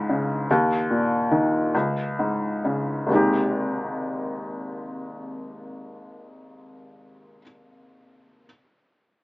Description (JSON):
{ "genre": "folk", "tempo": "42-51 BPM (dotted quarters)", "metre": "6/8", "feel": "straight", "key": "Ab major", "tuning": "A4 = 443 Hz", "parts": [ { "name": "felt-muted upright piano", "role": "accompaniment", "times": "0.0-8.5 s", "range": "Ab1 to G4", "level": "-22 LUFS", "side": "left 1 dB", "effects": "none" } ], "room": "moderate studio reverb, RT60 0.5 s", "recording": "AM radio sound", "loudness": "-21 LUFS", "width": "side -22 dB against mid", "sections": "0.0-3.1 A section; 3.1-5.9 B section", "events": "slowing down 0.0-3.1", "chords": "0.5 Eb5; 1.7 Db5; 3.1 Abmaj7" }